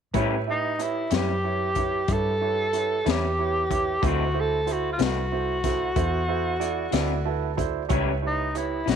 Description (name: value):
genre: slow blues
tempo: 62 BPM (dotted quarters)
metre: 12/8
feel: straight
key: A mixolydian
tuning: A4 = 437 Hz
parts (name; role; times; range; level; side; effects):
- clear upright piano; accompaniment; 0.1-9.0 s; E4 to A5; -29 LUFS; right 13 dB; none
- electric guitar through a small old amp; accompaniment; 0.1-9.0 s; A2 to F#4; -32 LUFS; left 14 dB; harmonic tremolo
- vintage muted fingered electric bass; bass; 0.1-9.0 s; B1 to A2; -29 LUFS; equal; none
- crunchy breakbeat drum kit; drums; 0.1-9.0 s; hi-hat, kick drum, snare drum; -28 LUFS; left 5 dB; none
- breathy tenor saxophone; melody; 0.5-9.0 s; D#4 to A4; -26 LUFS; equal; none
room: light reverb, studio reverb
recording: 1960s-style stereo with parts hard left and right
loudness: -23 LUFS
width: side -7 dB against mid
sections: 0.1-9.0 A section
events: upright piano fill 6.9-7.9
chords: 0.1 A7; 4.0 D7; 7.9 A7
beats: | 0.14 1.11 2.08 3.05 | 4.02 4.99 5.96 6.93 | 7.90 8.87